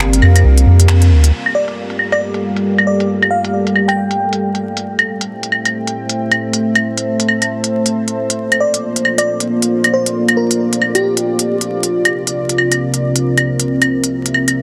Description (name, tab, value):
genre	future garage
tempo	136 BPM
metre	4/4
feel	swing 60% on 16ths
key	G dorian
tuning	A4 = 443 Hz
part	dark analog pad	sustained chords	0.0-14.6 s	C3 to A5	-19 LUFS	equal	chorus
part	soft dub sub bass	bass	0.0-1.3 s	G1 to F2	-10 LUFS	equal	none
part	organic electronic drum kit	drums	0.0-14.5 s	claves, finger snaps, hi-hat	-18 LUFS	equal	low-pass filter on hats, low-pass filter on perc, soft clipping on snare, low-pass filter on snare, low-pass filter on room
part	bell-like FM electric piano	melody	1.5-4.5, 8.6-11.6 s	G4 to G5	-22 LUFS	equal	chorus, digital delay
room	moderate huge ambient reverb, RT60 8.0 s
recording	dense, heavily limited modern master, vinyl crackle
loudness	-15 LUFS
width	mono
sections	0.0-1.3 A section; 1.3-14.6 B section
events	band accent 0.9; filter sweep on drum 1.3-14.6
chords	0.0 C7sus4; 1.3 Gm7; 4.9 Am7; 8.4 Bbmaj7; 11.9 C7sus4